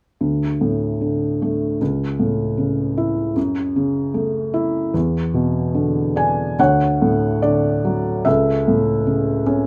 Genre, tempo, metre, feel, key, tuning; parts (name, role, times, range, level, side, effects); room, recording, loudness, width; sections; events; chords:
classical, lyrical solo piano; 71-78 BPM; 4/4; rubato; A4 = 440 Hz
felt-muted upright piano; solo; 0.2-9.7 s; C#2 to G#5; -19 LUFS; equal
light reverb; -19 LUFS; mono
0.2-6.6 A section; 6.6-9.7 B section
0.2 D5; 1.8 A/C#; 3.4 F#m7; 4.9 E5; 6.6 Dmaj7; 8.3 A/C#